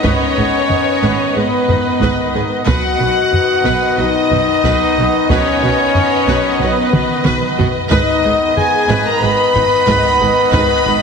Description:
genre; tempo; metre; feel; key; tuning
cinematic, epic orchestral film score; 92 BPM; 4/4; straight; G# minor; A4 = 443 Hz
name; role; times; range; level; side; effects
clear symphonic violin section; melody; 0.0-11.0 s; B4 to B5; -22 LUFS; left 4 dB; none
rich symphonic violin section; second line; 0.0-11.0 s; B4 to D#5; -23 LUFS; left 2 dB; none
rich studio viola section; accompaniment; 0.0-10.9 s; D#4 to B4; -23 LUFS; right 1 dB; none
clear trombone section; sustained chords; 0.0-11.0 s; D#3 to B3; -23 LUFS; right 5 dB; none
clear woodwind section; sustained chords; 0.0-11.0 s; B3 to D#5; -25 LUFS; left 1 dB; none
mellow French horn section; sustained chords; 0.0-11.0 s; B3 to B4; -18 LUFS; left 6 dB; none
mellow trumpet section; stabs; 0.0-11.0 s; B4 to B5; -19 LUFS; right 2 dB; none
rich symphonic cello section; bass; 0.0-10.9 s; G#2 to B2; -22 LUFS; right 3 dB; none
taiko ensemble; drums; 0.0-11.0 s; none; -20 LUFS; equal; none
clear symphonic double bass section; bass; 0.1-10.9 s; G#1 to B1; -23 LUFS; right 4 dB; none
room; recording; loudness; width
wet scoring stage reverb, RT60 1.9 s; heavily compressed radio sound, multiband compression; -12 LUFS; side -6 dB against mid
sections
0.0-11.0 A section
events
drum fill 6.9-7.9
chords
0.0 G#m; 2.7 B; 7.9 G#m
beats
| 0.05 0.71 1.36 2.02 | 2.68 3.33 3.99 4.64 | 5.30 5.95 6.61 7.26 | 7.91 8.57 9.22 9.87 | 10.53

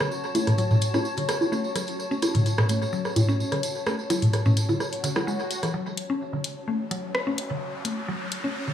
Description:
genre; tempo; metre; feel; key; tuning
minimal techno; 128 BPM; 4/4; straight; F# minor; A4 = 440 Hz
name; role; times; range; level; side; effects
mallet-like synth pluck; riff; 0.0-8.7 s; C#3 to C#4; -30 LUFS; left 1 dB; chorus, tape echo
booming analog drum machine; percussion; 0.0-5.7 s; bongos, rim click, toms; -24 LUFS; equal; tape echo
tambourine; percussion; 0.0-5.7 s; none; -36 LUFS; right 2 dB; tape echo
granular cloud pad; texture; 0.0-8.7 s; F#4 to A5; -32 LUFS; left 2 dB; built-in reverb
house drum kit; drums; 0.3-8.4 s; hi-hat, rim click; -32 LUFS; left 2 dB; high-pass filter on hats, high-pass filter on snare
swell and riser; sound effects; 5.0-8.7 s; none; -36 LUFS; equal; none
punchy sub bass; bass; 5.7-8.7 s; none; barely audible; none; none
room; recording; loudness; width
moderate echo chamber reverb, RT60 1.9 s, digital ambience; echo-heavy mix, small room ambience; -23 LUFS; side -10 dB against mid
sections
0.0-5.7 A section; 5.7-8.7 B section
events
swell 5.0-5.7; build-up 5.7-8.7; riser 5.7-8.7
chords
0.0 F#m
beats
| 0.12 0.58 1.05 1.52 | 1.99 2.46 2.93 3.40 | 3.87 4.33 4.80 5.27 | 5.74 6.21 6.68 7.15 | 7.62 8.08 8.55

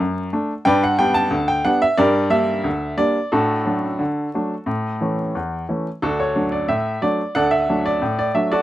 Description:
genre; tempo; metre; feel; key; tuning
ragtime piano; 90 BPM; 2/4; straight; D major; A4 = 440 Hz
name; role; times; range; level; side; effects
bright upright piano; solo; 0.0-8.6 s; D2 to A5; -18 LUFS; equal; none
room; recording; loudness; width
little or no reverb; dry, close 1970s-style studio recording, vinyl crackle; -18 LUFS; side -14 dB against mid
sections
0.0-8.6 A section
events
none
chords
0.0 D/F#; 0.7 G; 2.0 Gm; 3.3 D/A; 4.7 A; 6.0 D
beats
0.01 | 0.67 1.33 | 1.99 2.66 | 3.33 4.00 | 4.67 5.34 | 6.01 6.68 | 7.34 8.01

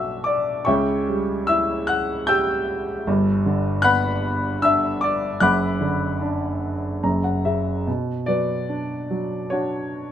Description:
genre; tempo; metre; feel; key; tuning
classical, lyrical solo piano; 75 BPM; 3/4; uneven beats, rubato; B minor; A4 = 440 Hz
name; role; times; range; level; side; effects
warm grand piano; solo; 0.0-10.1 s; F#1 to G6; -20 LUFS; equal; none
room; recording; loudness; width
moderate studio ambience, RT60 0.5 s; none; -20 LUFS; side -10 dB against mid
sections
0.0-7.9 A section; 7.9-10.1 B section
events
grand piano fill 6.6-7.9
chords
0.0 Bm; 0.7 C#dim; 3.1 G; 5.4 Bm/F#; 7.0 F#5; 7.9 Bm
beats
| 0.66 1.48 2.28 | 3.07 3.84 4.62 | 5.41 6.21 7.04 | 7.87 8.70 9.52

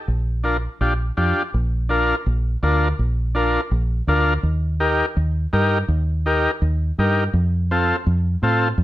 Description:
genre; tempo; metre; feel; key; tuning
latin, cumbia; 165 BPM; 4/4; straight; Bb major; A4 = 440 Hz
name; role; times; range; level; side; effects
deep dub fingered electric bass; bass; 0.1-8.8 s; Bb1 to A2; -20 LUFS; equal; none
combo organ; accompaniment; 0.4-8.7 s; C4 to Bb4; -20 LUFS; left 1 dB; none
room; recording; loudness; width
light reverb; none; -18 LUFS; side -14 dB against mid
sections
0.0-1.5 A section; 1.5-8.8 B section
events
none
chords
0.1 Bb; 4.4 Eb; 7.3 F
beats
| 0.08 0.44 0.81 1.17 | 1.54 1.90 2.26 2.63 | 2.99 3.35 3.72 4.08 | 4.44 4.80 5.17 5.53 | 5.89 6.25 6.62 6.98 | 7.34 7.71 8.07 8.43 | 8.79

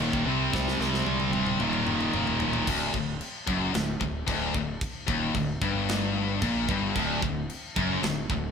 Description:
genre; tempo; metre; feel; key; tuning
heavy metal; 112 BPM; 4/4; straight; D phrygian dominant; A4 = 440 Hz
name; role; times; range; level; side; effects
fuzz guitar; riff; 0.0-8.5 s; D2 to C4; -31 LUFS; right 1 dB; distortion
heavy high-gain guitar; riff; 0.0-8.5 s; D2 to C4; -29 LUFS; left 7 dB; distortion
scooped high-gain guitar; riff; 0.0-2.7, 7.0-8.5 s; D2 to C4; -31 LUFS; right 8 dB; distortion
fuzz fingered electric bass; bass; 0.0-8.5 s; D1 to C2; -34 LUFS; right 1 dB; overdrive
tight metal drum kit; drums; 0.0-8.4 s; china cymbal, crash cymbal, kick drum, snare drum, toms; -32 LUFS; equal; none
room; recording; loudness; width
moderate large studio reverb, RT60 0.8 s; band playing live in one room; -25 LUFS; side -6 dB against mid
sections
0.0-2.7 A section; 2.7-8.5 B section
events
drum fill 0.5-2.7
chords
0.3 C5; 1.6 Eb5; 2.7 D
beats
0.00 | 0.54 1.07 1.60 2.14 | 2.67 3.21 3.74 4.28 | 4.81 5.34 5.88 6.42 | 6.95 7.49 8.02

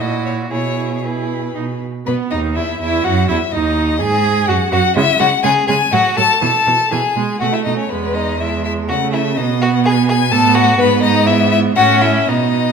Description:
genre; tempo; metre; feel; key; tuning
quick classical-period movement for string quartet; 113-129 BPM; 3/4; rubato; E major; A4 = 440 Hz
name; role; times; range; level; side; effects
clear violin; melody; 0.0-12.7 s; B4 to A5; -18 LUFS; left 9 dB; none
rich violin; second line; 0.0-12.7 s; B3 to A4; -19 LUFS; left 1 dB; none
clear viola; accompaniment; 0.0-12.7 s; E3 to G#4; -19 LUFS; right 7 dB; none
clear cello; bass; 0.0-12.7 s; D#2 to C#3; -19 LUFS; right 4 dB; none
room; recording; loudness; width
wet recital hall reverb, RT60 1.3 s; none; -13 LUFS; side -6 dB against mid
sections
0.0-2.1 A section; 2.1-12.7 B section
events
none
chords
0.0 F#7/A#; 0.5 E/B; 1.6 N.C.; 2.1 E5; 3.5 D#madd11; 5.0 C#5; 5.9 F#m; 6.4 E/B; 7.4 B9; 7.9 E; 8.9 A/C#; 9.4 B6; 10.3 B5/A; 10.8 Emaj7/G#; 11.8 A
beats
0.01 | 0.52 1.04 1.55 | 2.07 2.56 3.05 | 3.53 4.01 4.49 | 4.96 5.44 5.93 | 6.42 6.92 7.41 | 7.91 8.40 8.89 | 9.37 9.84 10.31 | 10.78 11.27 11.76 | 12.28

